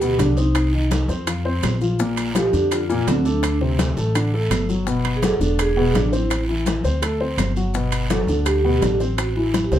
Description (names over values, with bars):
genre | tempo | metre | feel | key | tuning
Afro-Cuban jazz | 167 BPM | 4/4 | straight | G major | A4 = 440 Hz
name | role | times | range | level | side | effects
vibraphone with medium mallets | melody | 0.0-9.8 s | C4 to A4 | -22 LUFS | right 2 dB | none
dark grand piano | accompaniment | 0.0-9.8 s | Bb2 to C5 | -23 LUFS | left 2 dB | none
upright bass | bass | 0.0-9.8 s | E1 to F2 | -22 LUFS | equal | none
congas | percussion | 0.0-9.8 s | none | -28 LUFS | left 1 dB | none
maracas | percussion | 0.0-9.8 s | none | -37 LUFS | left 8 dB | none
bongos | percussion | 0.2-9.8 s | none | -29 LUFS | left 8 dB | none
guiro | percussion | 0.2-9.8 s | none | -36 LUFS | right 3 dB | none
timbales | percussion | 0.2-9.7 s | none | -29 LUFS | right 8 dB | none
claves | percussion | 0.6-9.4 s | none | -36 LUFS | right 6 dB | none
room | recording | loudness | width
light reverb | none | -18 LUFS | side -11 dB against mid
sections
0.0-9.8 A section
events
drum fill 9.5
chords
0.0 G; 0.6 Cm; 1.3 F5; 2.0 Bb6; 3.4 D7; 4.9 Gmaj7; 5.6 E7; 6.3 Am; 7.0 D7; 7.7 Gmaj9; 9.2 Am